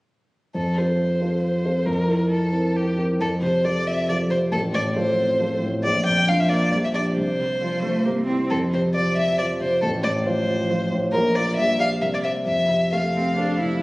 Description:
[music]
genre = quick classical-period movement for piano quartet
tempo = 136 BPM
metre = 3/4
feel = straight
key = F major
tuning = A4 = 439 Hz
[part]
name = warm concert grand piano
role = accompaniment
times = 0.5-13.8 s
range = A1 to D5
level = -22 LUFS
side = equal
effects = none
[part]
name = rich violin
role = melody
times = 0.6-13.6 s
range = G4 to G5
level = -23 LUFS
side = left 1 dB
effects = none
[part]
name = warm cello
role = second line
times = 3.6-13.8 s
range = F3 to E4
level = -29 LUFS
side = right 2 dB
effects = none
[sound]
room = moderate concert hall reverb, RT60 2.0 s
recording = recorded on a phone in the room, studio reverb, compression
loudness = -19 LUFS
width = side -21 dB against mid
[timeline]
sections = 0.6-3.2 A section; 3.2-13.8 B section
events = none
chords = 0.6 F; 1.9 C7/F; 3.2 F; 4.5 F/A; 5.8 Bb; 6.7 Gm/Bb; 7.2 F/C; 8.1 C; 8.5 F5; 9.8 F/A; 11.1 Bb; 11.6 Gm/Bb; 12.0 C7(no3); 12.5 F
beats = | 0.56 1.00 1.44 | 1.87 2.31 2.75 | 3.21 3.65 4.09 | 4.53 4.96 5.40 | 5.84 6.28 6.72 | 7.16 7.61 8.06 | 8.51 8.95 9.39 | 9.83 10.27 10.70 | 11.14 11.57 12.01 | 12.46 12.92 13.37

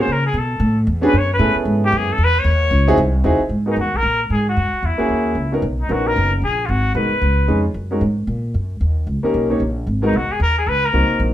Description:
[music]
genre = jazz, small-group swing and bop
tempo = 226 BPM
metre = 4/4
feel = swing 61% on 8ths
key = G# minor from 3.5 s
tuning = A4 = 440 Hz
[part]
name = trumpet with straight mute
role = melody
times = 0.0-7.6, 10.1-11.2 s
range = D#4 to C#5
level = -20 LUFS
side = left 2 dB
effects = none
[part]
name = clear concert grand piano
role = accompaniment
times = 0.0-11.3 s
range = G#3 to C#5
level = -19 LUFS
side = equal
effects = none
[part]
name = upright bass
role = bass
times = 0.0-11.3 s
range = F#1 to C#3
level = -18 LUFS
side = equal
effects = none
[sound]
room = wet small room reverb, RT60 0.6 s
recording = heard from further back in the room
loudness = -15 LUFS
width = side -12 dB against mid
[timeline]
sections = 0.0-3.5 A section; 3.5-11.3 B section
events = muted trumpet solo 0.0-3.5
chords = 0.3 Asus2; 0.9 E13; 1.4 Amaj9; 2.5 C#madd9; 3.0 G#7b13; 3.5 G#m9; 4.6 F#7; 5.6 Bmaj9; 6.7 G#m7; 7.2 C#7; 7.8 F#; 8.8 D#7; 9.9 G#madd9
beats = 0.07 | 0.34 0.60 0.87 1.13 | 1.39 1.66 1.92 2.19 | 2.45 2.71 2.98 3.24 | 3.51 3.77 4.04 4.30 | 4.57 4.83 5.10 5.36 | 5.63 5.89 6.16 6.42 | 6.69 6.95 7.22 7.48 | 7.75 8.02 8.28 8.54 | 8.81 9.07 9.34 9.61 | 9.87 10.14 10.40 10.67 | 10.93 11.20

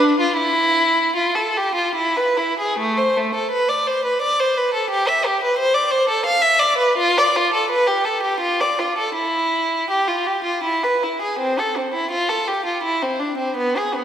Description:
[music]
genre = classical, baroque-style suite movement for unaccompanied violin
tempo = 70-89 BPM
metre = 3/4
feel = rubato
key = A minor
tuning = A4 = 440 Hz
[part]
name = rich violin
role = solo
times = 0.0-14.0 s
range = A3 to F5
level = -17 LUFS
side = equal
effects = none
[sound]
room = wet concert hall reverb, RT60 2.1 s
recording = recorded in a church or concert hall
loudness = -17 LUFS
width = side -9 dB against mid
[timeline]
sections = 0.0-2.8 A section; 2.8-14.0 A section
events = none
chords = none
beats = | 0.39 1.17 1.96 | 2.79 3.52 4.22 | 4.91 5.59 6.26 | 6.99 7.71 8.41 | 9.15 9.90 10.64 | 11.40 12.12 12.83 | 13.57

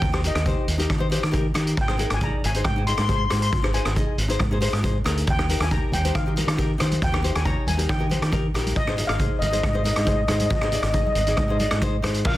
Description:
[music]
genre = calypso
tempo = 137 BPM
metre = 4/4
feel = straight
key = unclear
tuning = A4 = 440 Hz
[part]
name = steel pan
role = melody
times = 0.0-12.4 s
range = Bb4 to C6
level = -28 LUFS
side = left 1 dB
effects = tape echo
[part]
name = fingered electric bass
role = bass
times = 0.0-12.4 s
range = Ab1 to Eb3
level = -25 LUFS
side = equal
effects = none
[part]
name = street-band drum kit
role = drums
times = 0.0-12.4 s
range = crash cymbal, hi-hat, kick drum, rim click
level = -24 LUFS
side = equal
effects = soft clipping on snare
[part]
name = nylon-string guitar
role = accompaniment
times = 0.1-12.4 s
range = Eb4 to Eb5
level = -29 LUFS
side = left 3 dB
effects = none
[part]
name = congas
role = percussion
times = 5.9-12.1 s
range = none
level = -34 LUFS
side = right 2 dB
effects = none
[sound]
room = light reverb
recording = dense, heavily limited modern master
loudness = -20 LUFS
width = side -15 dB against mid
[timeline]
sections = 0.0-12.3 A section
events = none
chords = 0.0 Eb; 1.8 Ab; 5.3 Eb; 8.8 Ab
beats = | 0.01 0.45 0.89 1.33 | 1.76 2.20 2.64 3.08 | 3.52 3.95 4.39 4.83 | 5.26 5.70 6.14 6.58 | 7.01 7.45 7.89 8.32 | 8.76 9.20 9.63 10.07 | 10.51 10.94 11.38 11.82 | 12.25

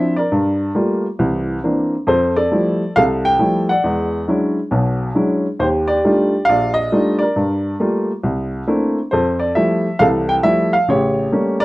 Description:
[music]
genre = solo jazz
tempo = 136 BPM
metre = 4/4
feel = swing 65% on 8ths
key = unclear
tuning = A4 = 442 Hz
[part]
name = warm upright piano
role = solo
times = 0.0-11.6 s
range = A1 to G5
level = -15 LUFS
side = equal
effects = none
[sound]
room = moderate club reverb, RT60 0.5 s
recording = dark, warm production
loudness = -15 LUFS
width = side -19 dB against mid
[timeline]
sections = 0.0-11.6 A section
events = none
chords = 0.3 Gm9; 1.2 C9; 2.1 Fmaj9; 3.8 E13; 5.6 Ebmaj9#11; 7.4 Gm9; 8.2 C13; 9.1 Fmaj9; 10.9 A7b9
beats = | 0.31 0.75 1.19 1.63 | 2.07 2.51 2.95 3.39 | 3.83 4.27 4.71 5.15 | 5.59 6.03 6.47 6.91 | 7.35 7.79 8.23 8.68 | 9.12 9.56 10.00 10.44 | 10.88 11.32

